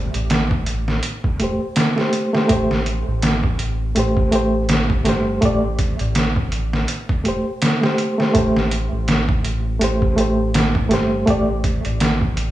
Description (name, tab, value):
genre	trip hop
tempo	82 BPM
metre	4/4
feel	swing 57% on 16ths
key	A minor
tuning	A4 = 440 Hz
part	round analog bass	bass	0.0-12.5 s	E1 to A1	-22 LUFS	equal	none
part	trip hop sampler-style drum kit	drums	0.1-12.5 s	hi-hat, kick drum, snare drum	-20 LUFS	equal	overdrive
part	bright reed electric piano	accompaniment	1.4-11.5 s	A3 to D5	-21 LUFS	equal	tremolo, tape echo
room	light reverb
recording	studio reverb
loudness	-16 LUFS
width	side -14 dB against mid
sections	0.0-12.5 A section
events	none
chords	0.0 Am7